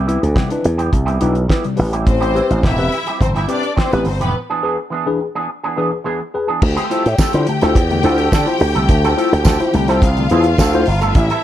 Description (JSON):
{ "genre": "disco", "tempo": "106 BPM", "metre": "4/4", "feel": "straight", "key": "unclear", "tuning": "A4 = 440 Hz", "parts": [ { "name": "electric guitar with an envelope filter", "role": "accompaniment", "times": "0.0-11.4 s", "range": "E3 to A4", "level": "-23 LUFS", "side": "right 4 dB", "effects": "analog chorus" }, { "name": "slap bass with an envelope filter", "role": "bass", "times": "0.0-11.3 s", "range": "E1 to D3", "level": "-16 LUFS", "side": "equal", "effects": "none" }, { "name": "tine electric piano", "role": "accompaniment", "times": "0.1-11.4 s", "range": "A2 to C5", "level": "-20 LUFS", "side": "left 3 dB", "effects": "tube saturation, phaser" }, { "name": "damped 70s drum kit", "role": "drums", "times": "0.1-11.4 s", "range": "crash cymbal, hi-hat, kick drum, snare drum", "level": "-17 LUFS", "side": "equal", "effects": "gated reverb" }, { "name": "clear symphonic string section", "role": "second line", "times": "2.1-11.4 s", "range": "B3 to G5", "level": "-21 LUFS", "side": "left 2 dB", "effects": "none" }, { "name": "tambourine", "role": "percussion", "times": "7.2-10.7 s", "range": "none", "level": "-29 LUFS", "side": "right 16 dB", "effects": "none" } ], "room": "small room ambience", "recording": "none", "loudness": "-14 LUFS", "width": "side -12 dB against mid", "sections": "0.0-6.6 A section; 6.6-11.4 B section", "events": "break 4.3-6.6", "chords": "0.0 Cmaj7; 1.8 Am7; 4.3 E7; 6.6 Dm7", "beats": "0.36 0.93 1.50 | 2.07 2.64 3.21 3.77 | 4.34 4.91 5.48 6.05 | 6.62 7.18 7.75 8.32 | 8.89 9.45 10.02 10.59 | 11.15" }